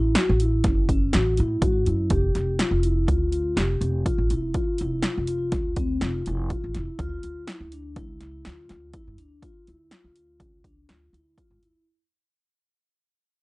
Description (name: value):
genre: progressive instrumental, band music in an uneven meter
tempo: 123 BPM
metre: 5/4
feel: straight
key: unclear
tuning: A4 = 440 Hz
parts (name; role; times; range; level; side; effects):
- vibraphone with soft mallets; arpeggios; 0.0-11.8 s; C4 to G4; -28 LUFS; left 1 dB; slapback echo
- upright bass; bass; 0.0-11.7 s; F1 to A2; -25 LUFS; equal; none
- punchy analog drum machine; drums; 0.2-11.7 s; hi-hat, kick drum, snare drum; -26 LUFS; equal; overdrive
room: light reverb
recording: dark, warm production, nothing above 10.8 kHz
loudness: -22 LUFS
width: side -22 dB against mid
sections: 0.0-11.9 A section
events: fade-out 0.0-11.9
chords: 0.0 A5; 2.1 N.C.; 7.0 Dmadd9